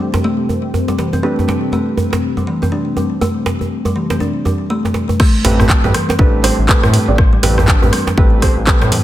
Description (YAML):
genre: afro house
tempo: 121 BPM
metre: 4/4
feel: swing 59% on 16ths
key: A minor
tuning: A4 = 435 Hz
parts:
  - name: warm analog pad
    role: sustained chords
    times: 0.0-5.2 s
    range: C3 to G4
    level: -23 LUFS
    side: left 4 dB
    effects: chorus, sidechain pumping
  - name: kalimba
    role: arpeggios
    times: 0.0-9.0 s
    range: E3 to D4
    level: -20 LUFS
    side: left 1 dB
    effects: sidechain pumping, ping-pong delay
  - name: felt-muted upright piano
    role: stabs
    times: 0.0-9.0 s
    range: A3 to D5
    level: -20 LUFS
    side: right 3 dB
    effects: sidechain pumping, ping-pong delay
  - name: djembe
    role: percussion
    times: 0.1-9.0 s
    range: none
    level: -19 LUFS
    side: right 2 dB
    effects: none
  - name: afro-pop drum kit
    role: drums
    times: 5.2-9.0 s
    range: crash cymbal, handclaps, hi-hat, rim click, toms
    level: -17 LUFS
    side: equal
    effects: none
  - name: electronic kick drum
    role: drums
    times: 5.2-8.8 s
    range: none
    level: -12 LUFS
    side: equal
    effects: none
  - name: smooth synth bass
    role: bass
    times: 5.4-9.0 s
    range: A1 to A2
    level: -16 LUFS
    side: equal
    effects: sidechain pumping
room: light reverb, digital ambience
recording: none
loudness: -12 LUFS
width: side -14 dB against mid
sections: 0.0-5.2 A section; 5.2-9.0 B section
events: drop 5.2-9.0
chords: 0.0 Am9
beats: 0.24 0.74 | 1.23 1.73 2.22 2.72 | 3.21 3.71 4.21 4.70 | 5.20 5.69 6.19 6.69 | 7.18 7.68 8.17 8.67